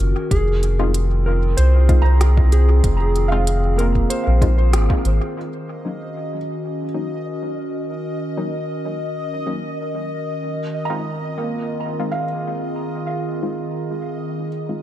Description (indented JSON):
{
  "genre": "ambient dub",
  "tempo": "95 BPM",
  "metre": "4/4",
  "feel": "swing 53% on 16ths",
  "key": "Eb dorian",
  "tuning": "A4 = 441 Hz",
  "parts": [
    { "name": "warbly tape-like pad", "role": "sustained chords", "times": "0.0-14.8 s", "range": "Eb3 to Bb4", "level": "-26 LUFS", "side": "right 1 dB", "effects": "chorus, built-in reverb" },
    { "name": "felt-muted upright piano", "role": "arpeggios", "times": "0.0-6.9, 10.9-14.8 s", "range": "Bb3 to Bb5", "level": "-29 LUFS", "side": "right 3 dB", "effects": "analog delay" },
    { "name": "soft dub sub bass", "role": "bass", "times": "0.0-5.2 s", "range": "F1 to C2", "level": "-15 LUFS", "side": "equal", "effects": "tube saturation" },
    { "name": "organic electronic drum kit", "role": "drums", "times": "0.0-5.2 s", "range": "hi-hat, rim click", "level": "-29 LUFS", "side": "equal", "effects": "low-pass filter on hats, studio reverb, low-pass filter on snare, dub echo" },
    { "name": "clean lap steel guitar", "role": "melody", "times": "0.3-4.7 s", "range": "Ab4 to C5", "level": "-27 LUFS", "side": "equal", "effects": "dub echo" },
    { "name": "electronic kick drum", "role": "drums", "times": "0.3-5.0 s", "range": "none", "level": "-20 LUFS", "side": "equal", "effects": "studio reverb" },
    { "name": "filtered dub chord stab", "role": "stabs", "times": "0.8-14.8 s", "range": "Gb3 to F4", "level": "-30 LUFS", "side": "left 2 dB", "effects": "chorus, dub echo" },
    { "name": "bubbling stepped-filter texture", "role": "texture", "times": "5.8-14.8 s", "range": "Eb5", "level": "-31 LUFS", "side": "left 2 dB", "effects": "chorus, built-in reverb" }
  ],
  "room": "light reverb, digital ambience",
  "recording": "echo-heavy mix",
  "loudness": "-18 LUFS",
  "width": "side -13 dB against mid",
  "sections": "0.0-5.4 A section; 5.4-14.8 B section",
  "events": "band accent 4.7-5.0",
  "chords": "0.3 Fm7; 5.4 Ebm7; 10.4 Fm7"
}